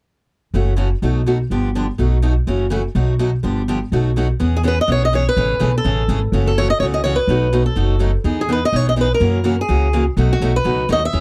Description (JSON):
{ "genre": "acoustic string swing (jazz manouche)", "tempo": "249 BPM", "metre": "4/4", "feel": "swing 55% on 8ths", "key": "unclear", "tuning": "A4 = 440 Hz", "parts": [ { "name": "picked steel-string acoustic guitar", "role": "accompaniment", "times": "0.5-11.2 s", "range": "B2 to G#4", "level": "-24 LUFS", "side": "equal", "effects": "none" }, { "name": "upright bass", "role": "bass", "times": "0.5-11.2 s", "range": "F#1 to F#2", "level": "-20 LUFS", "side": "equal", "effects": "none" }, { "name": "picked swing-style acoustic guitar", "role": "melody", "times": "4.6-11.2 s", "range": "F#4 to E5", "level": "-21 LUFS", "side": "equal", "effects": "none" } ], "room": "little or no reverb", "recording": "dry, close 1970s-style studio recording", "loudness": "-17 LUFS", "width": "mono", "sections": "0.5-4.4 A section; 4.4-11.2 B section", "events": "none", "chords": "0.5 F#m7; 1.0 B7; 1.5 G7; 2.0 B7; 2.5 F#m7; 3.0 B7; 3.4 G7; 3.9 B7; 4.4 E6; 5.4 Amaj9; 6.3 F#m7; 7.3 B7; 8.2 Emaj7; 9.2 F#7; 10.2 B7" }